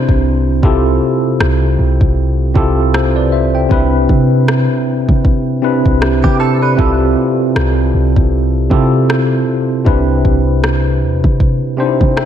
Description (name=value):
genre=contemporary R&B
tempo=78 BPM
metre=4/4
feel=swing 58% on 16ths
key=C major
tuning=A4 = 440 Hz
part: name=tine electric piano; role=accompaniment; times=0.0-12.3 s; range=C3 to G5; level=-14 LUFS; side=equal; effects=medium stereo tremolo
part: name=clean 808-style bass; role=bass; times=0.0-12.3 s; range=C2 to C3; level=-15 LUFS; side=equal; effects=none
part: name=smooth R&B drum kit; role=drums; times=0.1-12.3 s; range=kick drum, rim click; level=-16 LUFS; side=equal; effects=none
part: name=direct-recorded clean electric guitar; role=arpeggios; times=6.2-7.0 s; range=G4 to B4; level=-20 LUFS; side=right 6 dB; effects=ensemble chorus, analog delay
room=moderate lush hall reverb, RT60 2.2 s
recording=dreamy mix soaked in reverb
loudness=-11 LUFS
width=side -10 dB against mid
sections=0.0-12.3 A section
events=tine electric piano fill 11.8-12.3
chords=0.0 Cmaj9; 0.6 Fmaj9/C; 3.7 Cmaj9; 6.8 Fmaj9/C; 9.9 Cmaj9